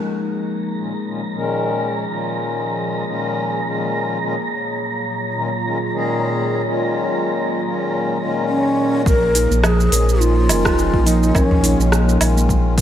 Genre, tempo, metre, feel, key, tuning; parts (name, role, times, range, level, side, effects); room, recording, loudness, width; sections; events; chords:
organic downtempo; 105 BPM; 4/4; swing 56% on 16ths; Bb minor; A4 = 440 Hz
warbly tape-like pad; sustained chords; 0.0-12.8 s; Bb2 to Db5; -26 LUFS; right 1 dB; chorus, built-in reverb, sidechain pumping, shimmer reverb
wind-like tuned noise texture; texture; 0.7-9.1 s; Bb5; -27 LUFS; right 2 dB; built-in reverb, ensemble chorus, shimmer reverb
pedal harmonium; accompaniment; 0.8-12.8 s; Bb2 to Bb4; -23 LUFS; left 3 dB; sidechain pumping, low-pass filter, digital delay, shimmer reverb
breathy low ney; melody; 8.5-11.9 s; Db4 to Bb4; -20 LUFS; right 1 dB; digital delay, shimmer reverb
steel tongue drum; arpeggios; 9.1-12.8 s; F3 to Bb4; -23 LUFS; equal; digital delay
warm sub bass; bass; 9.1-12.8 s; F1 to Bb1; -17 LUFS; equal; sidechain pumping
deep house drum kit; drums; 9.1-12.8 s; hi-hat, rim click, shaker, woodblock; -22 LUFS; right 2 dB; overdrive, low-pass filter on perc, low-pass filter on hats, low-pass filter on snare, gated reverb
electronic kick drum; drums; 9.1-12.8 s; -19 LUFS; equal; overdrive
udu; percussion; 11.5-11.6 s; -21 LUFS; equal
moderate lush hall reverb, RT60 2.6 s; bright 1980s-style digital production; -16 LUFS; side -10 dB against mid
0.0-9.1 A section; 9.1-12.8 B section
0.0 Bbm7; 4.5 Gbmaj9/Bb; 9.1 Bbm7